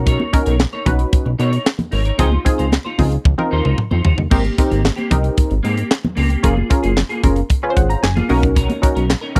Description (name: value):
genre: early-eighties boogie funk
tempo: 113 BPM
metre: 4/4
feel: straight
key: Ab major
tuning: A4 = 441 Hz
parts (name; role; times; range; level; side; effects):
- funky polysynth comp; accompaniment; 0.0-9.4 s; C4 to Bb5; -22 LUFS; equal; chorus
- chorused synth bass; bass; 0.0-9.4 s; Gb1 to B2; -20 LUFS; equal; none
- semi-hollow electric guitar; riff; 0.1-9.4 s; Bb3 to C#5; -27 LUFS; equal; ensemble chorus
- tight funk drum kit; drums; 0.1-9.4 s; crash cymbal, handclaps, hi-hat, kick drum, snare drum, toms; -19 LUFS; equal; none
- congas; percussion; 0.1-9.4 s; none; -28 LUFS; equal; none
room: little or no reverb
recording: dry, close 1970s-style studio recording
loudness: -17 LUFS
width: mono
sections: 0.0-4.3 A section; 4.3-9.4 A section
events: drum fill 3.3-4.3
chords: 0.0 Bmaj9; 2.2 Dbmaj9; 4.3 Abmaj9; 6.4 Gbmaj9; 8.3 Bmaj9